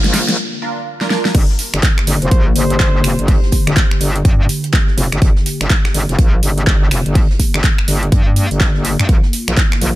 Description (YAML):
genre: bass house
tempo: 124 BPM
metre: 4/4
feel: swing 61% on 16ths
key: G minor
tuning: A4 = 439 Hz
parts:
  - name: sweeping resonant pad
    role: sustained chords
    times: 0.0-10.0 s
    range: D3 to G4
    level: -25 LUFS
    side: left 1 dB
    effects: chorus, vintage 12-bit sampler grit, sidechain pumping
  - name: metallic wobble bass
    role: bass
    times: 0.0-9.9 s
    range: F1 to G2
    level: -16 LUFS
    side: equal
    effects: chorus, overdrive, sidechain pumping, high-pass filter
  - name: big-room dance drum kit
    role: drums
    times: 0.0-9.9 s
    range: crash cymbal, finger snaps, handclaps, hi-hat, snare drum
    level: -20 LUFS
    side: equal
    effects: overdrive
  - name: band-passed chord stab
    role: stabs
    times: 0.6-1.3 s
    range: D4 to Bb4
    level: -24 LUFS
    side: right 5 dB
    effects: phaser, ensemble chorus, sidechain pumping, ping-pong delay
  - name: electronic kick drum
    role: drums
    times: 1.3-9.7 s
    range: none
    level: -13 LUFS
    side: equal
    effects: overdrive
  - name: jazz brush drum kit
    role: drums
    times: 1.3-10.0 s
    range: hi-hat, snare drum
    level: -30 LUFS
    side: right 2 dB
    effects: none
  - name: silver concert flute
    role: melody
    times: 2.2-3.2 s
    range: C5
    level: -25 LUFS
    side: left 1 dB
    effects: ping-pong delay
room: little or no reverb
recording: none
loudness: -12 LUFS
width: side -16 dB against mid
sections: 0.0-1.3 A section; 1.3-10.0 B section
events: build-up 0.0-1.3; drum fill 0.0-0.4, 1.0-1.3; break 0.4-1.3; drop 1.3-10.0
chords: 0.0 Bb; 1.3 Gm; 9.1 Bb